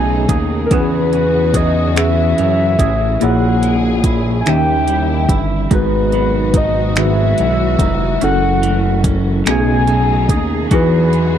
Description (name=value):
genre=slow six-eight R&B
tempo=48 BPM (dotted quarters)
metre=6/8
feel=straight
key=unclear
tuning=A4 = 440 Hz
part: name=soft octave-layered synth lead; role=melody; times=0.0-11.4 s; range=A#4 to G#5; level=-18 LUFS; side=left 2 dB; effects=chorus
part: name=clean electric guitar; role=second line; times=0.0-11.4 s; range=F#2 to G#4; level=-24 LUFS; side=right 5 dB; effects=none
part: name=tine electric piano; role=accompaniment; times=0.0-11.4 s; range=B2 to F#5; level=-19 LUFS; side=left 1 dB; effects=overdrive, fast stereo tremolo
part: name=dark studio string section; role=sustained chords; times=0.0-11.4 s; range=B2 to G#4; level=-26 LUFS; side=left 2 dB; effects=none
part: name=fat analog bass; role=bass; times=0.0-11.4 s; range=E#1 to F#2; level=-17 LUFS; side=equal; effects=none
part: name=smooth R&B drum kit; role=drums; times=0.3-11.3 s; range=finger snaps, hi-hat, kick drum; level=-17 LUFS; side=equal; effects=overdrive
room=little or no reverb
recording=dry, close 1970s-style studio recording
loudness=-12 LUFS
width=side -9 dB against mid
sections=0.0-11.4 A section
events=none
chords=0.0 B13; 0.7 E69; 3.2 A#m7b5; 4.5 D#7b9; 5.7 G#m7; 8.2 F#m7; 9.5 B13; 10.7 Emaj9